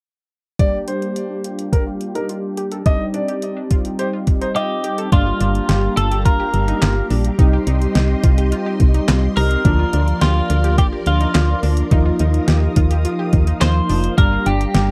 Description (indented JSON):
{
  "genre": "synth-pop",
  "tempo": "106 BPM",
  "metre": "4/4",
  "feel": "straight",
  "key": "G minor",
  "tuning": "A4 = 440 Hz",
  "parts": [
    { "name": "clear baby grand piano", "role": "second line", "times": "0.6-5.0 s", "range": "Bb4 to Eb5", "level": "-27 LUFS", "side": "equal", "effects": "delay" },
    { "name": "mellow synth brass", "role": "accompaniment", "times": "0.6-14.9 s", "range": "F3 to G4", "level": "-25 LUFS", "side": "equal", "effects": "chorus" },
    { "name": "analog pluck", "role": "arpeggios", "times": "0.6-14.9 s", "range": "D4 to A4", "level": "-31 LUFS", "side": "equal", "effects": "chorus, low-pass filter, delay" },
    { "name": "detuned 8-bit digital drum machine", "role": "drums", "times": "0.6-14.9 s", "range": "handclaps, hi-hat, kick drum, snare drum", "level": "-19 LUFS", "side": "equal", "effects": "overdrive" },
    { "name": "twelve-string electric guitar", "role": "melody", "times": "4.6-14.9 s", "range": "F4 to C5", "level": "-25 LUFS", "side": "equal", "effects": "delay" },
    { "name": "string machine, full ensemble", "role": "sustained chords", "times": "5.1-14.9 s", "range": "G4 to Eb6", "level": "-33 LUFS", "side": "equal", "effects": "ensemble chorus" },
    { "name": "solid FM bass", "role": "bass", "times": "5.1-14.9 s", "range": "F1 to Eb2", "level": "-19 LUFS", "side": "equal", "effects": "none" }
  ],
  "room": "light reverb",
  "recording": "dark, warm production",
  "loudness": "-17 LUFS",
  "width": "mono",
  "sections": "0.6-5.1 A section; 5.1-14.9 B section",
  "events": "filter sweep on synth pluck 0.6-5.1",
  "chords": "0.6 Gm; 2.9 Cmadd9; 5.1 Gm7; 7.4 Cm; 9.7 Bbadd9/D; 11.9 Ebsus2; 14.2 Gm7",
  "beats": "| 0.59 1.16 1.73 2.29 | 2.86 3.42 3.99 4.56 | 5.12 5.69 6.25 6.82 | 7.39 7.95 8.52 9.09 | 9.65 10.22 10.78 11.35 | 11.92 12.48 13.05 13.61 | 14.18 14.75"
}